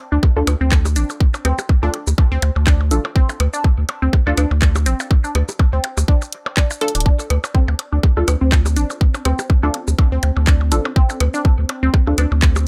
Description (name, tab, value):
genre	minimal techno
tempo	123 BPM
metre	4/4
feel	swing 56% on 16ths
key	D minor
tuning	A4 = 440 Hz
part	resonant blip pluck	riff	0.1-12.2 s	C4 to A4	-28 LUFS	equal	phaser, sidechain pumping, dub echo
part	saturated sub bass	bass	0.1-12.7 s	D1 to D2	-19 LUFS	equal	sidechain pumping
part	electronic kick drum	drums	0.2-12.5 s	none	-16 LUFS	equal	none
part	percussion blips	percussion	0.2-12.6 s	none	-29 LUFS	equal	dub echo
part	filtered dub chord stab	stabs	0.4-12.1 s	D4 to A4	-27 LUFS	equal	phaser, lush chorus, dub echo
part	garage drum kit	drums	0.5-12.6 s	handclaps, hi-hat, shaker	-25 LUFS	equal	none
part	swarming drone	texture	8.4-12.7 s	C4	-35 LUFS	equal	none
room	little or no reverb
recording	none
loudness	-17 LUFS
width	mono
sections	0.0-12.7 A section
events	drum fill 6.8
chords	0.0 D5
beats	0.23 0.72 | 1.21 1.69 2.18 2.67 | 3.16 3.65 4.13 4.62 | 5.11 5.60 6.08 6.57 | 7.06 7.55 8.04 8.52 | 9.01 9.50 9.99 10.47 | 10.96 11.45 11.94 12.43